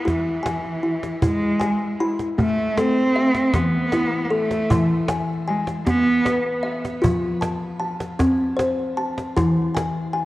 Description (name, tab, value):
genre	world meditative, meditative tuned percussion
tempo	52 BPM (dotted quarters)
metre	6/8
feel	straight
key	unclear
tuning	A4 = 440 Hz
part	clear cello	melody	0.0-6.7 s	E3 to C4	-23 LUFS	right 1 dB	shimmer reverb, tape echo
part	kalimba	arpeggios	0.0-10.2 s	E3 to B5	-21 LUFS	left 1 dB	shimmer reverb
part	cajon	percussion	0.1-9.9 s	none	-26 LUFS	right 1 dB	none
room	wet recital hall reverb, RT60 1.6 s, small room ambience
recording	worn, warbling old tape, cassette tape, warbly pitch drift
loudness	-19 LUFS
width	side -16 dB against mid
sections	0.0-2.4 A section; 2.4-10.2 B section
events	none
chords	0.0 E; 2.4 Am; 4.7 E; 7.0 F; 9.4 E